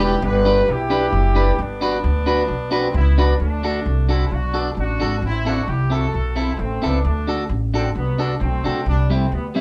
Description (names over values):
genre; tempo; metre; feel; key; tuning
ska; 132 BPM; 4/4; swing 54% on 8ths; D mixolydian; A4 = 441 Hz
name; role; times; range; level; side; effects
warm horn section; melody; 0.0-9.6 s; F#3 to B4; -26 LUFS; equal; none
clean electric guitar; accompaniment; 0.0-9.6 s; G3 to B4; -24 LUFS; equal; none
upright bass; bass; 0.0-9.6 s; E1 to D2; -22 LUFS; equal; tube saturation
room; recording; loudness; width
wet small room reverb, RT60 0.5 s; band playing live in one room, lossy compression artefacts; -20 LUFS; mono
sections
0.0-3.4 A section; 3.4-9.6 B section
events
none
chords
0.0 Em7; 1.6 Gmaj7; 3.4 D; 5.2 Am; 7.0 D; 8.9 C